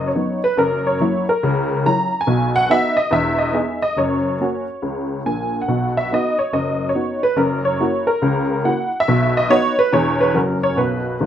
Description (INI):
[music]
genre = jazz, stride piano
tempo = 141 BPM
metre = 4/4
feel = swing 65% on 8ths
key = B major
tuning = A4 = 439 Hz
[part]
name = honky-tonk upright piano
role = solo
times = 0.0-11.3 s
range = E1 to A#5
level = -16 LUFS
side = equal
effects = none
[sound]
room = moderate studio ambience, RT60 0.5 s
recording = none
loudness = -16 LUFS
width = side -10 dB against mid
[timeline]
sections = 0.0-11.3 A section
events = none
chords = 0.0 B; 0.6 F#7; 1.4 F#7/C#; 2.3 B; 3.1 Emaj7; 4.0 F#; 5.7 B; 7.4 F#7; 8.2 F#7/C#; 9.1 B; 9.9 E; 10.4 F#